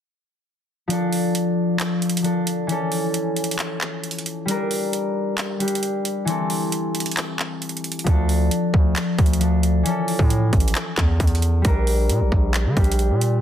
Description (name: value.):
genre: hip hop, trap.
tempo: 134 BPM.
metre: 4/4.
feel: half-time.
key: D minor.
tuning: A4 = 441 Hz.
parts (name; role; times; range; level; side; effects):
concert harp; accompaniment; 0.9-13.4 s; E3 to Bb4; -23 LUFS; left 2 dB; low-pass filter.
trap drum kit; drums; 0.9-13.3 s; handclaps, hi-hat, kick drum; -23 LUFS; right 1 dB; none.
distorted 808-style bass; bass; 8.1-13.4 s; A1 to D3; -20 LUFS; equal; distortion.
room: little or no reverb.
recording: dense, heavily limited modern master.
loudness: -19 LUFS.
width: side -10 dB against mid.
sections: 0.9-13.4 A section.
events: kick muted 0.9-8.1.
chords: 0.9 Dm; 2.7 A; 4.5 Bb6; 6.3 C6; 8.1 Dm; 9.9 A; 11.6 Bb6.